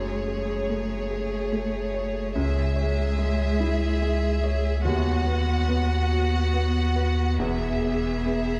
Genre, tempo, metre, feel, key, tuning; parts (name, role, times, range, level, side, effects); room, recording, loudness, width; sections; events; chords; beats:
neoclassical piano and strings; 48 BPM (dotted quarters); 6/8; rubato; A4 = 440 Hz
rich studio violin section; melody; 0.0-8.6 s; C#5 to F#5; -34 LUFS; equal
rich cello; second line; 0.0-8.6 s; G#3 to B3; -34 LUFS; equal
felt-muted upright piano; accompaniment; 0.0-8.6 s; C#2 to C#5; -33 LUFS; equal
rich viola; accompaniment; 0.0-8.6 s; F#4 to G#4; -35 LUFS; equal
saturated sub bass; bass; 0.0-8.6 s; E1 to D#2; -28 LUFS; equal
wet church reverb, RT60 3.7 s; recorded in a church or concert hall; -25 LUFS; mono
0.0-8.6 A section
0.0 F#madd9; 2.4 C#m; 4.8 B/D#; 7.4 E
1.11 | 2.36 3.61 | 4.85 6.11 | 7.38